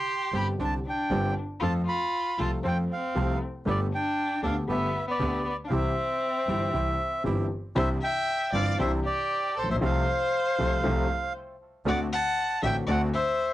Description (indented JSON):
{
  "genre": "tango",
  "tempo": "117 BPM",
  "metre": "4/4",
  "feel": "rubato",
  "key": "C major",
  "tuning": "A4 = 440 Hz",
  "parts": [
    { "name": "bandoneon", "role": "melody", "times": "0.0-13.5 s", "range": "C5 to C6", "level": "-30 LUFS", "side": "right 2 dB", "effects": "none" },
    { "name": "warm violin", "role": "second line", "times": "0.0-13.5 s", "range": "B3 to F#5", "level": "-31 LUFS", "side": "left 3 dB", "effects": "none" },
    { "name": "warm concert grand piano", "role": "accompaniment", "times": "0.3-13.1 s", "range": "G1 to A4", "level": "-29 LUFS", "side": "left 1 dB", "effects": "none" },
    { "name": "bandoneon", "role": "stabs", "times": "0.3-13.1 s", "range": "A3 to A4", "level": "-40 LUFS", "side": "right 4 dB", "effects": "analog delay" },
    { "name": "clear double bass", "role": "bass", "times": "0.3-13.1 s", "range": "G1 to F2", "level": "-31 LUFS", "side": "right 1 dB", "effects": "none" }
  ],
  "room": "light reverb",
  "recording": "dry, gritty hardware recording, transformer saturation, nothing above 10.9 kHz",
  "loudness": "-25 LUFS",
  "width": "side -15 dB against mid",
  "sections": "0.0-7.8 A section; 7.8-13.5 A section",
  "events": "none",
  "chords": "0.0 Csus2; 1.6 F; 3.7 Gadd9; 5.7 C; 7.8 Cadd9; 9.8 F/C; 11.9 D7",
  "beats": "0.07 0.58 1.09 | 1.60 2.12 2.63 3.14 | 3.65 4.17 4.68 5.19 | 5.71 6.22 6.73 7.25 | 7.77 8.28 8.79 9.30 | 9.82 10.33 10.84 11.35 | 11.86 12.37 12.88 13.40"
}